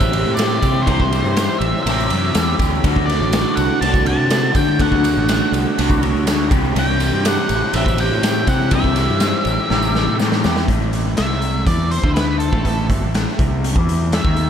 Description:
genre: psychedelic rock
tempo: 122 BPM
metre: 4/4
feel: straight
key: A dorian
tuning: A4 = 442 Hz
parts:
  - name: octave-fuzz lead guitar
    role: melody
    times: 0.0-14.5 s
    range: A4 to A5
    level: -23 LUFS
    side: right 1 dB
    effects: distortion, tape echo
  - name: warm studio string section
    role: sustained chords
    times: 0.0-14.5 s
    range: A3 to E6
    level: -34 LUFS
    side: right 3 dB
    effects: none
  - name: electric guitar through a small old amp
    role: riff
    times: 0.0-14.5 s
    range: G2 to G4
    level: -20 LUFS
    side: left 1 dB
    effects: phaser, tape echo
  - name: fuzz fingered electric bass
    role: bass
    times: 0.0-14.5 s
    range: G1 to D3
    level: -20 LUFS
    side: equal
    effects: overdrive
  - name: raw garage drum kit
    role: drums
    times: 0.0-14.5 s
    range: hi-hat, kick drum, ride cymbal, snare drum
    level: -19 LUFS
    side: equal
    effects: tape echo
  - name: tambourine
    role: percussion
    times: 0.0-10.6 s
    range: none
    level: -39 LUFS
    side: right 9 dB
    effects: none
room: small room ambience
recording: echo-heavy mix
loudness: -15 LUFS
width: side -8 dB against mid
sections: 0.0-10.7 A section; 10.7-14.5 B section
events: drum fill 9.7-10.7; lead electric guitar solo 10.7-14.5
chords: 0.0 C; 2.8 D; 6.5 C; 10.7 Am

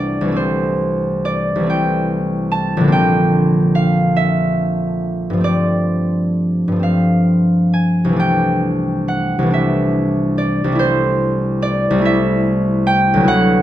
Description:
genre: classical, solo harp piece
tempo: 43-51 BPM (dotted quarters)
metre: 6/8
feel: rubato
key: unclear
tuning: A4 = 440 Hz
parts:
  - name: concert harp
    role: solo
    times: 0.0-13.6 s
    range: Bb1 to A5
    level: -14 LUFS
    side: equal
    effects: none
room: moderate recital hall reverb, RT60 1.3 s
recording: close, detailed microphones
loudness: -14 LUFS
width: side -12 dB against mid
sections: 0.0-13.6 A section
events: none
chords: 0.4 Am7/C; 2.9 Bb69; 5.5 G9sus4; 8.2 C69; 10.8 Am7/C

